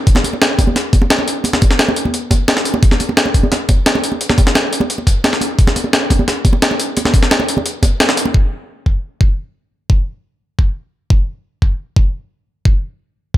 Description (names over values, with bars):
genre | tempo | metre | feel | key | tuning
drum and bass | 174 BPM | 4/4 | straight | none | none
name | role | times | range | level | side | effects
electronic kick drum | drums | 0.1-13.4 s | none | -12 LUFS | equal | none
jungle sampler-style drum kit | drums | 0.1-8.2 s | hi-hat, snare drum | -15 LUFS | equal | overdrive, low-pass filter on snare, low-pass filter on hats, low-pass filter on room
congas | percussion | 0.1-8.3 s | none | -20 LUFS | right 2 dB | none
room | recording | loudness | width
digital ambience | none | -13 LUFS | side -14 dB against mid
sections
0.0-8.3 A section; 8.3-13.4 B section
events
band accent 8.0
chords
none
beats
| 0.07 0.41 0.76 1.10 | 1.45 1.79 2.14 2.48 | 2.83 3.17 3.52 3.86 | 4.21 4.55 4.90 5.24 | 5.59 5.93 6.28 6.62 | 6.96 7.31 7.66 8.00 | 8.35 8.69 9.03 9.38 | 9.72 10.07 10.41 10.76 | 11.10 11.45 11.79 12.14 | 12.48 12.83 13.17